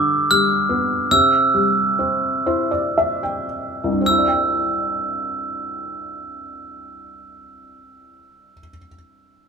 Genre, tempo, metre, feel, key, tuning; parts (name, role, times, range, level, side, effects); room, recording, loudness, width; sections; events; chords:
children's music, lullaby; 52-78 BPM; 3/4; rubato; C major; A4 = 444 Hz
glockenspiel with brass mallets; melody; 0.0-8.7 s; D6 to F6; -19 LUFS; right 2 dB
felt-muted upright piano; accompaniment; 0.0-9.5 s; C2 to G5; -22 LUFS; left 1 dB
light reverb; minimal, uncompressed stereo recording; -16 LUFS; side -5 dB against mid
0.0-4.1 A section; 4.1-7.5 B section
slowing down 0.0-4.1; felt piano fill 2.0-4.1
0.0 G; 1.1 C